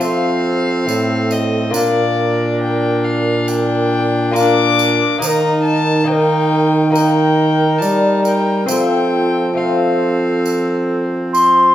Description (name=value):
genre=classical, renaissance-style consort dance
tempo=69 BPM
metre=4/4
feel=straight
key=F mixolydian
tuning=A4 = 440 Hz
part: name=warm violin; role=melody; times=0.0-11.3 s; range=D5 to D6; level=-21 LUFS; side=left 5 dB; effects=none
part: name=mellow hollow alto recorder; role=second line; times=0.0-11.7 s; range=A4 to C6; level=-19 LUFS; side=right 2 dB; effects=none
part: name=lute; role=accompaniment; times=0.0-11.7 s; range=A2 to C5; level=-21 LUFS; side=left 4 dB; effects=none
part: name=warm viola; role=accompaniment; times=0.0-11.7 s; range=C4 to Eb4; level=-20 LUFS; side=left 1 dB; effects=none
part: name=warm trombone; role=bass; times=0.0-11.7 s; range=A2 to G3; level=-18 LUFS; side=right 2 dB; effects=none
part: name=tambourine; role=percussion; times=0.0-11.7 s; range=none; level=-29 LUFS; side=right 5 dB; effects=none
room=wet stone room reverb, RT60 1.2 s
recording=heard from further back in the room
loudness=-13 LUFS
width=side -12 dB against mid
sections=0.0-11.7 A section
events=none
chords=0.0 F; 1.7 Bb; 5.2 Eb; 8.7 F